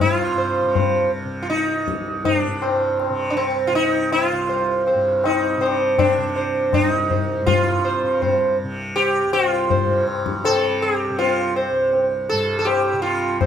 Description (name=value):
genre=indian classical, Hindustani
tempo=80 BPM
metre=5/4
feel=straight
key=C raga bhimpalasi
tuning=A4 = 440 Hz
part: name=sitar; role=melody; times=0.0-13.5 s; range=C4 to C5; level=-19 LUFS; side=right 2 dB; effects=none
part: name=tanpura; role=drone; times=0.0-13.5 s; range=C2 to C3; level=-28 LUFS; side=equal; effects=none
part: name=tabla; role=percussion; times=0.0-13.5 s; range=none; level=-23 LUFS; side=left 8 dB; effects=none
room=light reverb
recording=close, detailed microphones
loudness=-17 LUFS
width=side -8 dB against mid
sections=0.0-13.5 A section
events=none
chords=none